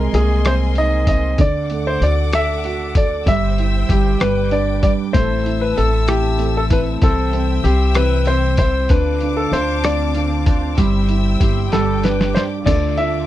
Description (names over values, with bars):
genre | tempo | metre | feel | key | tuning
six-eight pop ballad | 64 BPM (dotted quarters) | 6/8 | straight | C major | A4 = 440 Hz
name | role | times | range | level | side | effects
clear grand piano | melody | 0.0-13.3 s | G4 to E5 | -21 LUFS | left 2 dB | none
felt-muted upright piano | accompaniment | 0.0-13.3 s | C3 to D5 | -22 LUFS | right 8 dB | none
warm studio string section | sustained chords | 0.0-13.3 s | C4 to E6 | -28 LUFS | left 3 dB | none
upright bass | bass | 0.0-13.3 s | G1 to D2 | -19 LUFS | equal | none
lo-fi sampler-style drum kit | drums | 0.1-13.1 s | crash cymbal, hi-hat, kick drum, rim click, snare drum | -18 LUFS | equal | none
clean electric guitar | arpeggios | 5.1-13.3 s | A2 to C5 | -26 LUFS | left 10 dB | lush chorus
room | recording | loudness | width
little or no reverb | dry, close 1970s-style studio recording | -15 LUFS | side -13 dB against mid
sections
0.0-12.7 A section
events
drum fill 11.7-12.7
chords
0.0 Abadd9/C; 1.4 D; 3.3 C/G; 4.2 G; 5.1 Am; 7.0 C; 8.9 Dm7; 10.8 C/G; 11.7 G; 12.7 Dm